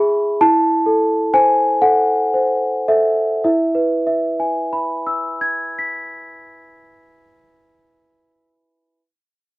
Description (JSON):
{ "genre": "classical, lullaby for celesta", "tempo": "35-46 BPM (dotted quarters)", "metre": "6/8", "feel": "rubato", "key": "E major", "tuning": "A4 = 440 Hz", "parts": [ { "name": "celesta", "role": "solo", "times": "0.0-9.0 s", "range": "E4 to B6", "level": "-15 LUFS", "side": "equal", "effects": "none" } ], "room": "light reverb", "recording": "dry, close 1970s-style studio recording", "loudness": "-15 LUFS", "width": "side -20 dB against mid", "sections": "0.0-3.4 A section; 3.4-6.8 B section", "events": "slowing down 0.0-3.4", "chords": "0.4 Am/E; 3.4 E" }